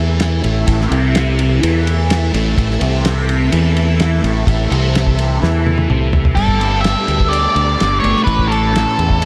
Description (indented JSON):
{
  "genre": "psychedelic rock",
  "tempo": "126 BPM",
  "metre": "4/4",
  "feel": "straight",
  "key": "unclear",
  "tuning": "A4 = 439 Hz",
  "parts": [
    { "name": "string machine, full ensemble", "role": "sustained chords", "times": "0.0-9.3 s", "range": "E3 to E5", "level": "-26 LUFS", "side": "equal", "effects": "ensemble chorus" },
    { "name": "fuzz guitar", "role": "riff", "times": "0.0-9.3 s", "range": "A2 to B4", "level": "-21 LUFS", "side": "equal", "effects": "distortion, phaser" },
    { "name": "fingered electric bass", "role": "bass", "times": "0.0-9.3 s", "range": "G1 to E2", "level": "-19 LUFS", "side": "equal", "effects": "none" },
    { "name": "cloth-damped thuddy drum kit", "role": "drums", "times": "0.2-9.3 s", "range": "crash cymbal, kick drum, ride cymbal, snare drum, toms", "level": "-22 LUFS", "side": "equal", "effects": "none" },
    { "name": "octave-fuzz lead guitar", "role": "melody", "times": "6.4-9.3 s", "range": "A4 to E5", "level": "-19 LUFS", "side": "equal", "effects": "distortion, delay" }
  ],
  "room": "moderate huge ambient reverb, RT60 4.0 s",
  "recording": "dreamy mix soaked in reverb",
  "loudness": "-15 LUFS",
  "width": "mono",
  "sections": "0.0-6.4 A section; 6.4-9.3 B section",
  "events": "drum fill 5.4-6.4",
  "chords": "0.0 A5; 6.4 Gadd9; 8.3 A",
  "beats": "0.20 | 0.67 1.15 1.62 2.10 | 2.57 3.04 3.52 3.99 | 4.47 4.94 5.42 5.89 | 6.37 6.84 7.32 7.79 | 8.27 8.74 9.22"
}